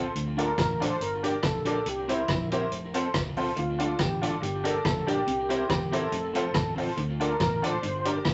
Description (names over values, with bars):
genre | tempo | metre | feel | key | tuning
ska | 141 BPM | 4/4 | swing 54% on 8ths | D minor | A4 = 440 Hz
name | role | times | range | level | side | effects
electric guitar at the edge of break-up | accompaniment | 0.0-8.2 s | C4 to Bb4 | -37 LUFS | equal | tape echo
honky-tonk upright piano | stabs | 0.0-8.2 s | C4 to D5 | -34 LUFS | equal | none
fingered electric bass | bass | 0.0-8.3 s | E1 to D2 | -37 LUFS | equal | none
street-band drum kit | drums | 0.2-8.3 s | hi-hat, kick drum, rim click | -33 LUFS | equal | none
mellow tonewheel organ | melody | 0.4-8.3 s | E4 to C5 | -32 LUFS | equal | overdrive, chorus vibrato, slow rotary speaker
electric guitar through a small old amp | riff | 3.6-8.3 s | E2 to D3 | -43 LUFS | equal | none
room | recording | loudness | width
wet studio ambience, RT60 0.5 s | nothing above 8.0 kHz | -28 LUFS | mono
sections
0.0-8.3 A section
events
none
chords
0.1 Dm; 1.0 Gm; 1.9 C7; 2.7 F; 3.6 Dm; 4.4 Gm; 5.3 C7; 6.1 F; 7.0 Dm; 7.8 Gm